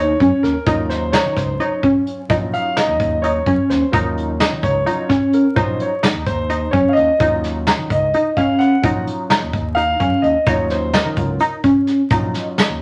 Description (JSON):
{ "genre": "progressive instrumental, band music in an uneven meter", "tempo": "257 BPM (eighths)", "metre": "7/8", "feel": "straight", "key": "Eb dorian", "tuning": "A4 = 440 Hz", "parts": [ { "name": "warm concert grand piano", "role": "accompaniment", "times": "0.0-12.8 s", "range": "Gb3 to Gb5", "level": "-22 LUFS", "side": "equal", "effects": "none" }, { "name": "tight sequenced synth", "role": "arpeggios", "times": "0.0-12.8 s", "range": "Db4 to Eb4", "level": "-21 LUFS", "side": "equal", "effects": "chorus, phaser" }, { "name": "overdriven fingered electric bass", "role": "bass", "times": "0.0-12.8 s", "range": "Bb1 to Eb3", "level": "-27 LUFS", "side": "equal", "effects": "none" }, { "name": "vintage brush drum kit", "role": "drums", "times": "0.2-12.7 s", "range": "hi-hat, kick drum, snare drum", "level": "-23 LUFS", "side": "equal", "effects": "none" }, { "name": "egg shaker", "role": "percussion", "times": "10.5-12.7 s", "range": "none", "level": "-52 LUFS", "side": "equal", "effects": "none" } ], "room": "wet studio reverb, RT60 0.5 s", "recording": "vinyl crackle, nothing above 11.0 kHz", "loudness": "-17 LUFS", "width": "mono", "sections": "0.0-12.8 A section", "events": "grand piano solo 0.0-12.8", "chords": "0.0 Ebm7", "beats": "0.20 0.43 | 0.66 0.90 1.13 1.36 1.60 1.83 2.06 | 2.30 2.53 2.77 3.00 3.23 3.47 3.70 | 3.93 4.17 4.40 4.63 4.87 5.10 5.33 | 5.57 5.80 6.03 6.26 6.50 6.73 6.96 | 7.20 7.43 7.67 7.90 8.13 8.37 8.60 | 8.83 9.07 9.30 9.53 9.77 10.00 10.23 | 10.47 10.70 10.94 11.17 11.40 11.64 11.87 | 12.11 12.34 12.57 12.81" }